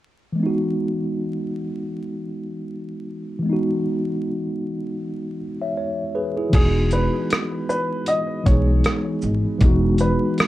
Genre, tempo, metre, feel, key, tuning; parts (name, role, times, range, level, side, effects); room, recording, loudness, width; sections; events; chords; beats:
lo-fi hip hop; 78 BPM; 4/4; swing 57% on 16ths; E major; A4 = 442 Hz
mellow tine electric piano; accompaniment; 0.3-10.5 s; E3 to E5; -23 LUFS; equal; medium stereo tremolo, cassette tape, low-pass filter
warm upright piano; melody; 6.5-10.3 s; G#4 to D#5; -25 LUFS; equal; low-pass filter, tape echo, plate reverb
upright bass; bass; 6.5-10.1 s; E1 to B1; -21 LUFS; equal
dusty soul sampler-style drum kit; drums; 6.5-10.5 s; crash cymbal, hi-hat, kick drum, rim click, shaker; -19 LUFS; equal; vintage 12-bit sampler grit
moderate small room reverb, RT60 0.6 s; dark, warm production, vinyl crackle; -20 LUFS; side -15 dB against mid
0.4-6.5 A section; 6.5-10.5 B section
0.4 Emaj7
| 0.38 1.15 1.92 2.69 | 3.46 4.23 5.00 5.76 | 6.53 7.30 8.07 8.84 | 9.61 10.38